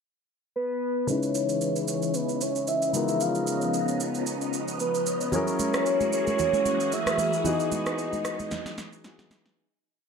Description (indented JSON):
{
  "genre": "amapiano",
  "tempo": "113 BPM",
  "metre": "4/4",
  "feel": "swing 55% on 16ths",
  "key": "C# dorian",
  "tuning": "A4 = 440 Hz",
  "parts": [
    { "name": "soft octave-layered synth lead", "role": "melody", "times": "0.6-9.0 s", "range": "B4 to E#5", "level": "-27 LUFS", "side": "equal", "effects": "chorus, phaser, low-pass filter, digital delay" },
    { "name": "warm concert grand piano", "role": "accompaniment", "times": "1.1-9.6 s", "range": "C#3 to B4", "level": "-31 LUFS", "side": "left 3 dB", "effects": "low-pass filter" },
    { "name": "phased string machine", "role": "sustained chords", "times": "1.4-9.6 s", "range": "E3 to A#5", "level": "-31 LUFS", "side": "right 1 dB", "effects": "ensemble chorus, phaser, low-pass filter" },
    { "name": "electronic shaker, rim click and snare drum", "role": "drums", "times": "1.1-9.6 s", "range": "none", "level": "-34 LUFS", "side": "right 3 dB", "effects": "none" },
    { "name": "congas", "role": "percussion", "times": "5.3-9.4 s", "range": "none", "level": "-34 LUFS", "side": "right 4 dB", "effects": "none" }
  ],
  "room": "light reverb",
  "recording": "none",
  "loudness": "-24 LUFS",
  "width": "side -6 dB against mid",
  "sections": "0.0-1.1 pickup bar; 1.1-9.6 breakdown",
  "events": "filter sweep 1.1-9.6; fade-out 7.5-9.6; drum fill 8.5-9.6",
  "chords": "0.0 N.C.; 1.1 C#m9; 2.9 C#13; 5.3 F#9; 7.5 Emaj9",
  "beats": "0.02 0.55 | 1.08 1.61 2.14 2.67 | 3.20 3.73 4.27 4.80 | 5.33 5.86 6.39 6.92 | 7.45 7.98 8.51 9.04"
}